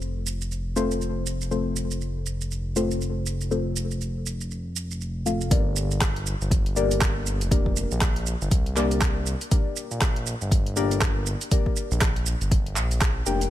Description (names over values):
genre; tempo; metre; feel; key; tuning
afro house; 120 BPM; 4/4; swing 59% on 16ths; G minor; A4 = 440 Hz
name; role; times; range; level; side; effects
deep mellow chord stab; stabs; 0.0-13.5 s; A3 to G5; -28 LUFS; left 3 dB; chorus, cassette tape, sidechain pumping, digital delay
smooth synth bass; bass; 0.0-13.5 s; F1 to C2; -28 LUFS; equal; tube saturation, sidechain pumping
deep house drum kit; drums; 0.0-13.5 s; handclaps, hi-hat, rim click, shaker; -29 LUFS; right 3 dB; none
electronic kick drum; drums; 5.5-13.1 s; none; -22 LUFS; equal; none
room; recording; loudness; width
little or no reverb; none; -23 LUFS; side -13 dB against mid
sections
0.0-5.5 A section; 5.5-13.5 B section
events
drop 5.5-13.5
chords
0.0 F; 5.5 Gm